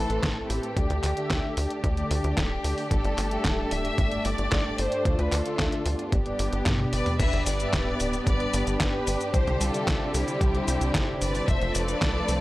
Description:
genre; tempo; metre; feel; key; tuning
italo disco; 112 BPM; 4/4; straight; unclear; A4 = 440 Hz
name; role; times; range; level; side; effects
warm symphonic violin section; melody; 0.0-12.4 s; E4 to E5; -31 LUFS; left 1 dB; tape echo
rich symphonic string section; sustained chords; 0.0-12.4 s; D3 to A4; -32 LUFS; right 1 dB; none
mellow synth brass; stabs; 0.0-12.4 s; G2 to E5; -33 LUFS; left 2 dB; chorus, cassette tape
tight sequencer bass; bass; 0.0-12.4 s; D1 to G2; -29 LUFS; equal; none
detuned 8-bit digital drum machine; drums; 0.1-12.4 s; cabasa, crash cymbal, handclaps, hi-hat, snare drum, toms; -30 LUFS; equal; none
electronic kick drum; drums; 0.2-12.1 s; none; -27 LUFS; equal; overdrive
room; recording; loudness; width
little or no reverb; dry, gritty hardware recording; -23 LUFS; side -17 dB against mid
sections
0.0-7.2 A section; 7.2-12.4 B section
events
drum fill 6.7-7.2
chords
0.0 Amadd9; 0.8 Dsus4; 5.1 Dm; 6.1 G; 9.3 Cadd9; 11.5 F6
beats
0.23 | 0.77 1.30 1.84 2.37 | 2.91 3.45 3.98 4.52 | 5.05 5.59 6.12 6.66 | 7.20 7.73 8.27 8.80 | 9.34 9.87 10.41 10.95 | 11.48 12.02

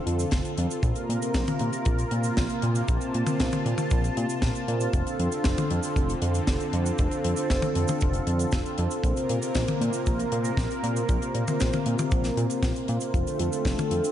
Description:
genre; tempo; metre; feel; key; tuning
italo disco; 117 BPM; 4/4; straight; unclear; A4 = 441 Hz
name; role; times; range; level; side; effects
warm analog pad; sustained chords; 0.0-14.1 s; C3 to A5; -30 LUFS; right 1 dB; chorus
mellow synth brass; stabs; 0.0-14.1 s; C4 to C5; -33 LUFS; left 1 dB; chorus, cassette tape, tape echo
fat analog bass; bass; 0.1-14.0 s; F1 to Bb2; -28 LUFS; equal; tube saturation, tape echo
tight funk drum kit; drums; 0.1-14.1 s; cabasa, hi-hat, snare drum, toms; -32 LUFS; left 2 dB; none
kick drum; drums; 0.3-13.8 s; none; -27 LUFS; equal; none
wide unison lead; melody; 13.1-14.1 s; F4 to A4; -30 LUFS; equal; tape echo
room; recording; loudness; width
moderate plate reverb, RT60 2.8 s; dreamy mix soaked in reverb, nothing above 10.8 kHz; -23 LUFS; side -11 dB against mid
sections
0.0-14.1 A section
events
filter sweep on analog polysynth 0.0-14.1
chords
0.0 F6; 0.8 Bbsus2; 4.9 F6; 9.0 Bbsus2; 13.1 F6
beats
0.32 | 0.83 1.35 1.86 2.37 | 2.89 3.40 3.91 4.42 | 4.94 5.45 5.96 6.48 | 6.99 7.50 8.02 8.53 | 9.04 9.55 10.07 10.58 | 11.09 11.61 12.12 12.63 | 13.14 13.66

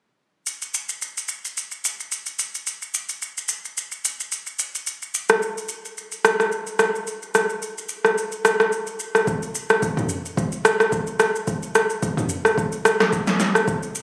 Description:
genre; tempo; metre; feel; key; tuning
amapiano; 109 BPM; 4/4; swing 55% on 16ths; none; none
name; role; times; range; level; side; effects
deep house drum kit; drums; 0.5-14.0 s; kick drum, rim click, shaker, snare drum, toms; -23 LUFS; equal; overdrive
room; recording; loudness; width
moderate lush hall reverb, RT60 2.6 s; recorded on a phone in the room, studio reverb; -23 LUFS; mono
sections
0.5-9.3 A section; 9.3-14.0 B section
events
none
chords
none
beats
| 0.47 1.02 1.57 2.12 | 2.67 3.22 3.77 4.32 | 4.87 5.42 5.97 6.52 | 7.07 7.62 8.17 8.72 | 9.27 9.82 10.37 10.92 | 11.47 12.03 12.57 13.13 | 13.68

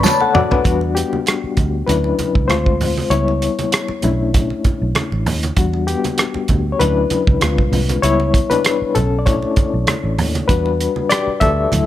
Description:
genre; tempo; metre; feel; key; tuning
lush 1970s-style soul; 98 BPM; 4/4; swing 54% on 16ths; unclear; A4 = 438 Hz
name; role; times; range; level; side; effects
barky reed electric piano; accompaniment; 0.0-11.9 s; C#3 to B5; -18 LUFS; left 5 dB; overdrive, fast tremolo
soft string machine; sustained chords; 0.0-0.6 s; D3 to B3; -29 LUFS; equal; none
congas; percussion; 0.0-11.9 s; none; -26 LUFS; right 5 dB; none
vibraphone with medium hard mallets; texture; 0.0-0.8 s; D5 to B5; -22 LUFS; equal; none
cloth-damped thuddy drum kit; drums; 0.1-11.9 s; hi-hat, kick drum, rim click, snare drum, toms; -18 LUFS; right 1 dB; none
vintage muted fingered electric bass; bass; 0.7-11.9 s; A1 to E2; -20 LUFS; right 1 dB; none
room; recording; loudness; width
light reverb, small room ambience; none; -14 LUFS; side -12 dB against mid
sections
0.7-11.9 A section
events
drum fill 0.0-0.7; reed electric piano solo 0.7-11.9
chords
0.0 Bm9; 0.7 Em7; 1.9 Dmaj9; 2.5 Dm7b5; 3.1 C#m7b5; 4.0 Bm11; 5.6 Em7; 6.8 Dmaj9; 7.4 Dm7b5; 8.0 C#m7b5; 9.0 Bm11; 10.5 Em7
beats
0.04 | 0.65 1.27 1.88 2.50 | 3.11 3.73 4.34 4.96 | 5.57 6.19 6.80 7.42 | 8.03 8.65 9.26 9.88 | 10.49 11.11 11.72

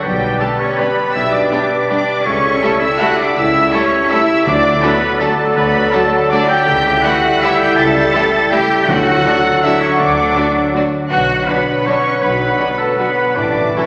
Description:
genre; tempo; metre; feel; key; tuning
classical; 162 BPM; 3/4; uneven beats, rubato; D major; A4 = 440 Hz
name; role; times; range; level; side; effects
dark studio violin section; melody; 0.0-13.9 s; G5 to A6; -25 LUFS; equal; none
clear oboe; second line; 0.0-13.9 s; G4 to A5; -25 LUFS; equal; none
mellow clarinet; second line; 0.0-13.9 s; A4 to B4; -24 LUFS; equal; none
small flute group; second line; 0.0-13.9 s; D5 to A5; -25 LUFS; equal; none
warm bassoon; accompaniment; 0.0-13.9 s; E3 to A3; -25 LUFS; equal; none
concert harp; arpeggios; 0.0-13.9 s; A2 to B4; -27 LUFS; equal; none
dark trumpet section; stabs; 0.0-13.9 s; G4 to A5; -22 LUFS; equal; none
bright studio cello section; bass; 0.0-13.9 s; G3 to A4; -23 LUFS; equal; none
mellow tuba; bass; 0.0-13.7 s; A1 to D2; -29 LUFS; equal; none
rich studio double bass section; bass; 0.1-13.7 s; A1 to D2; -30 LUFS; equal; none
rich studio violin section; second line; 0.4-13.8 s; D4 to A4; -26 LUFS; equal; none
rich studio viola section; accompaniment; 0.4-13.9 s; E3 to E4; -30 LUFS; equal; none
dark French horn section; sustained chords; 0.4-13.9 s; E3 to G4; -26 LUFS; equal; none
timpani; percussion; 4.5-5.0, 8.9-9.4, 13.4-13.8 s; A2 to D3; -28 LUFS; equal; none
room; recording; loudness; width
wet concert hall reverb, RT60 2.2 s; none; -14 LUFS; mono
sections
0.0-13.9 A section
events
timpani fill 13.4-13.9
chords
0.0 G/B; 2.3 A7/C#; 4.5 D; 6.7 A7/C#; 8.9 D; 11.1 Bm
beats
| 0.04 0.41 0.79 | 1.15 1.51 1.90 | 2.26 2.62 3.00 | 3.36 3.73 4.11 | 4.47 4.83 5.21 | 5.57 5.94 6.31 | 6.67 7.04 7.42 | 7.78 8.14 8.52 | 8.88 9.25 9.64 | 10.00 10.36 10.75 | 11.11 11.48 11.86 | 12.23 12.60 12.99 | 13.37 13.76

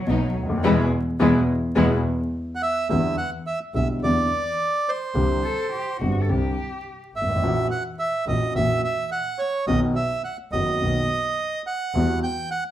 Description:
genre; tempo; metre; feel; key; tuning
tango; 106 BPM; 4/4; rubato; E minor; A4 = 440 Hz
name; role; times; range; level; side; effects
rich cello; second line; 0.0-1.9, 5.4-7.0 s; F#3 to A4; -28 LUFS; left 3 dB; none
warm grand piano; accompaniment; 0.1-12.2 s; F#1 to G4; -24 LUFS; left 1 dB; none
warm chamber string section; stabs; 0.1-1.9 s; G#3 to E4; -28 LUFS; equal; none
clear double bass; bass; 0.1-12.2 s; F#1 to E2; -25 LUFS; equal; none
bandoneon; melody; 2.6-12.6 s; C5 to G5; -25 LUFS; right 3 dB; none
room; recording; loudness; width
wet club reverb, RT60 0.9 s; heard from further back in the room, vinyl crackle; -21 LUFS; side -12 dB against mid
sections
0.0-2.9 A section; 2.9-12.7 B section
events
cello solo 0.0-2.9; band accent 0.6-2.9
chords
0.1 B7; 0.6 E; 2.9 Em7; 5.2 Csus2; 7.4 F#7/A#; 9.7 B; 11.9 Emadd9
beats
0.08 | 0.64 1.20 1.77 2.33 | 2.90 3.46 4.03 4.60 | 5.16 5.72 6.29 6.85 | 7.42 7.98 8.55 9.12 | 9.68 10.25 10.81 11.38 | 11.95 12.52

